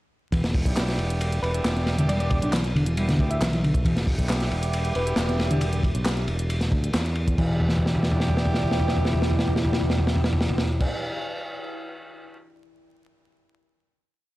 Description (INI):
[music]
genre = breakbeat, breaks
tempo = 136 BPM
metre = 4/4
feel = straight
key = E minor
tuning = A4 = 440 Hz
[part]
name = picked electric bass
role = riff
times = 0.3-10.9 s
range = D3 to E4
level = -28 LUFS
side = equal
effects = tube saturation, analog delay
[part]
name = modern bright fingered electric bass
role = bass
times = 0.3-10.8 s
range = E1 to E2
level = -25 LUFS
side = equal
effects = tube saturation
[part]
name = crunchy breakbeat drum kit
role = drums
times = 0.3-12.4 s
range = crash cymbal, hi-hat, kick drum, ride cymbal, snare drum, toms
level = -26 LUFS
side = equal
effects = none
[part]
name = garage drum kit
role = drums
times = 0.3-7.4 s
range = handclaps, hi-hat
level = -36 LUFS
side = equal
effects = overdrive
[part]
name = warm horn section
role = stabs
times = 0.7-10.9 s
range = B3 to G4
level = -33 LUFS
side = right 2 dB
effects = analog delay
[part]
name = thumb-piano-like synth pluck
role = melody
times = 1.4-5.1 s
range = B4 to E5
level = -32 LUFS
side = equal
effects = chorus, AM radio sound, analog delay
[part]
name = deep dark ambient pad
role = sustained chords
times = 4.4-10.9 s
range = E4 to D6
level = -34 LUFS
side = equal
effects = chorus, built-in reverb, vintage 12-bit sampler grit, sidechain pumping
[sound]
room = small room ambience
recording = dry, gritty hardware recording, vinyl crackle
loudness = -21 LUFS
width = side -17 dB against mid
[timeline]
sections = 0.3-7.4 drop; 7.4-10.9 final chord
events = drop 0.3-7.4; drum fill 7.6-10.8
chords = 0.3 Em7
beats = | 0.33 0.77 1.21 1.65 | 2.09 2.53 2.97 3.41 | 3.85 4.30 4.74 5.18 | 5.62 6.06 6.50 6.94 | 7.38 7.83 8.27 8.71 | 9.15 9.59 10.03 10.47